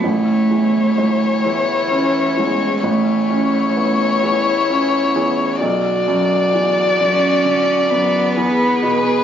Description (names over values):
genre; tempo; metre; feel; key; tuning
neoclassical piano and strings; 43 BPM (dotted quarters); 6/8; rubato; A major; A4 = 438 Hz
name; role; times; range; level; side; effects
dark violin; melody; 0.0-9.2 s; B4 to D5; -18 LUFS; left 3 dB; none
warm cello; second line; 0.0-9.2 s; E3 to C#4; -19 LUFS; right 3 dB; none
felt-muted upright piano; accompaniment; 0.0-9.2 s; A1 to C#4; -20 LUFS; equal; none
warm viola; accompaniment; 0.0-9.2 s; E4 to G#4; -25 LUFS; right 3 dB; none
room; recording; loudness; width
light reverb; recorded on a phone in the room, club reverb, compression, nothing above 7.6 kHz; -14 LUFS; side -9 dB against mid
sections
0.0-9.2 A section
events
none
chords
0.0 A; 5.6 Bmadd9; 8.4 E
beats
| 0.04 1.44 | 2.83 4.23 | 5.61 6.99 | 8.36